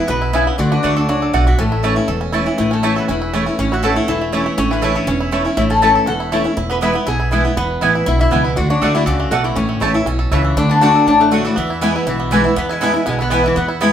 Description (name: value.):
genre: bluegrass.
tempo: 240 BPM.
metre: 4/4.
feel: straight.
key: A major.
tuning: A4 = 440 Hz.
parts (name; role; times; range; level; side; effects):
bluegrass banjo; melody; 0.0-13.9 s; E3 to A4; -25 LUFS; right 5 dB; none.
mandolin; melody; 0.0-13.9 s; A4 to B5; -21 LUFS; left 4 dB; none.
lap resonator guitar; second line; 0.0-13.9 s; E3 to B4; -21 LUFS; left 1 dB; none.
picked steel-string acoustic guitar; accompaniment; 0.0-13.9 s; E2 to F#4; -19 LUFS; left 1 dB; none.
upright bass; bass; 0.1-13.9 s; E1 to E2; -20 LUFS; equal; none.
mandolin; stabs; 0.3-13.9 s; A3 to A5; -20 LUFS; right 4 dB; none.
room: wet studio reverb, RT60 0.8 s.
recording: band playing live in one room.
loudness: -13 LUFS.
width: side -9 dB against mid.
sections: 0.0-2.6 A section; 2.6-10.6 A section; 10.6-13.9 B section.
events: none.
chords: 0.0 E; 0.6 D; 1.6 A; 6.6 E; 8.6 D; 9.6 A; 10.6 D; 11.6 E.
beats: 0.09 0.34 | 0.59 0.84 1.09 1.34 | 1.59 1.84 2.09 2.34 | 2.58 2.83 3.08 3.33 | 3.58 3.83 4.08 4.33 | 4.58 4.83 5.08 5.33 | 5.58 5.83 6.08 6.32 | 6.57 6.82 7.07 7.32 | 7.57 7.82 8.07 8.32 | 8.57 8.82 9.07 9.32 | 9.57 9.82 10.07 10.32 | 10.57 10.82 11.07 11.32 | 11.57 11.82 12.06 12.31 | 12.56 12.81 13.06 13.31 | 13.56 13.81.